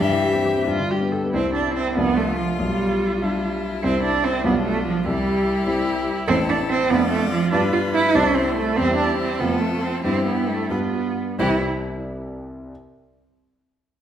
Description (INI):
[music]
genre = quick classical-period movement for piano quartet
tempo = 84-100 BPM (dotted quarters)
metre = 6/8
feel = rubato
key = C major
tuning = A4 = 440 Hz
[part]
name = clear violin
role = melody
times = 0.0-11.6 s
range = D4 to E5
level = -29 LUFS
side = left 6 dB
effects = none
[part]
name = rich cello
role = second line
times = 0.0-11.6 s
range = E3 to F4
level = -22 LUFS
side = right 4 dB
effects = none
[part]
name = rich viola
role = accompaniment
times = 0.0-11.6 s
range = E3 to A4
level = -29 LUFS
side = equal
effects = none
[part]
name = warm grand piano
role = accompaniment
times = 0.0-12.7 s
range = A1 to C5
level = -24 LUFS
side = left 2 dB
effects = none
[sound]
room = wet recital hall reverb, RT60 1.4 s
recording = recorded in a church or concert hall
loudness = -19 LUFS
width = side -10 dB against mid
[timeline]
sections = 0.0-1.3 A section; 1.3-11.4 B section; 11.4-12.7 C section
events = none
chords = 0.0 C/G; 0.7 G; 1.3 C; 2.0 Dm7/C; 2.6 G7/B; 3.8 C; 4.4 G7/B; 5.1 C; 6.3 Am; 6.9 Dm/F; 7.5 G7; 8.1 C; 8.8 C/E; 9.4 F; 10.0 C/G; 10.7 G7; 11.4 C